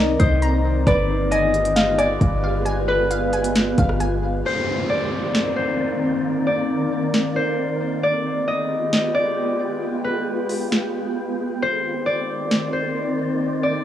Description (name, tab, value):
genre	hip hop, atmospheric cloud-rap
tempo	134 BPM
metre	4/4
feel	half-time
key	C minor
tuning	A4 = 440 Hz
part	concert harp	melody	0.0-13.8 s	B4 to Eb5	-23 LUFS	left 1 dB	low-pass filter, tape echo
part	ethereal airy pad	sustained chords	0.0-13.8 s	Eb3 to D5	-24 LUFS	equal	ensemble chorus, built-in reverb, phaser, sidechain pumping
part	glassy wavetable pluck	arpeggios	0.0-4.5 s	B4 to Bb5	-26 LUFS	equal	chorus, low-pass filter, tape echo
part	warm 808-style bass	bass	0.0-4.4 s	G1 to C2	-22 LUFS	equal	none
part	wind-like tuned noise texture	texture	0.1-13.8 s	Ab3 to G5	-30 LUFS	left 1 dB	built-in reverb
part	smooth R&B drum kit	drums	0.2-12.6 s	hi-hat, kick drum, rim click, snare drum	-21 LUFS	equal	overdrive
part	downlifter	sound effects	4.5-8.0 s	none	-30 LUFS	equal	none
room	light reverb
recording	dry, gritty hardware recording, transformer saturation, cassette tape, small room ambience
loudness	-19 LUFS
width	side -11 dB against mid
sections	0.0-4.5 A section; 4.5-13.8 B section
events	none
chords	0.0 Cm9; 0.9 G7b9; 4.5 Cm9; 8.0 G7b9; 11.6 Cm9